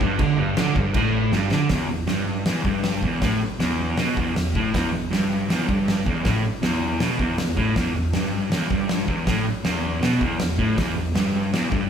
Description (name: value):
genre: garage rock duo or trio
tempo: 159 BPM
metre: 4/4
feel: straight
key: unclear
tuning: A4 = 439 Hz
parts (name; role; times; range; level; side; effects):
- fuzz guitar; riff; 0.0-11.9 s; E2 to D3; -22 LUFS; right 1 dB; distortion
- oversized low-tuned drum kit; drums; 0.0-11.8 s; crash cymbal, hi-hat, kick drum, snare drum; -25 LUFS; equal; none
room: moderate large studio reverb, RT60 1.0 s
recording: band playing live in one room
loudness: -20 LUFS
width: side -8 dB against mid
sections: 0.0-1.7 A section; 1.7-11.9 B section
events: drum fill 1.3-1.7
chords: none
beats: | 0.19 0.57 0.95 1.32 | 1.70 2.08 2.46 2.84 | 3.22 3.60 3.98 4.35 | 4.73 5.11 5.49 5.87 | 6.25 6.62 7.00 7.38 | 7.76 8.13 8.51 8.89 | 9.27 9.64 10.02 10.39 | 10.77 11.15 11.52